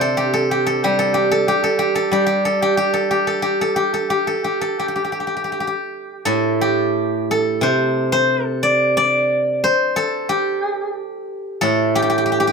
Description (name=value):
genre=chinese traditional, Chinese solo plucked strings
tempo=80-95 BPM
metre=4/4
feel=rubato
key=G zhi mode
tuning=A4 = 440 Hz
part: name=steel-string zither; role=solo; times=0.0-12.5 s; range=A2 to E5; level=-16 LUFS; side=equal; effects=none
room=moderate studio reverb, RT60 0.6 s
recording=none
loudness=-16 LUFS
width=side -5 dB against mid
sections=0.0-6.3 A section; 6.3-12.5 B section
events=none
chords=none